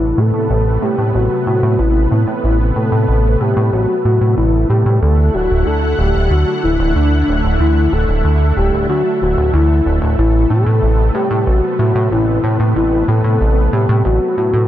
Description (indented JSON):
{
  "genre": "synthwave",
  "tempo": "93 BPM",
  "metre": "4/4",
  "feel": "straight",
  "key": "A dorian",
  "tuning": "A4 = 440 Hz",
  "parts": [
    { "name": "soft octave-layered synth lead", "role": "melody", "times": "0.0-14.7 s", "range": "D4 to A4", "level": "-17 LUFS", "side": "left 2 dB", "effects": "chorus, tremolo, tape echo" },
    { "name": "analog string pad", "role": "sustained chords", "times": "0.0-14.7 s", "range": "C3 to F#5", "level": "-20 LUFS", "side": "right 1 dB", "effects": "ensemble chorus" },
    { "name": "chorused synth bass", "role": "bass", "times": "0.0-14.7 s", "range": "D1 to A2", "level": "-14 LUFS", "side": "equal", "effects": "none" }
  ],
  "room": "light reverb, digital ambience",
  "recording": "none",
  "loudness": "-12 LUFS",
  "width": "side -12 dB against mid",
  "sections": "0.0-14.7 A section",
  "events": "none",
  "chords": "0.0 Amadd9; 5.0 Dadd9; 10.2 Amadd9"
}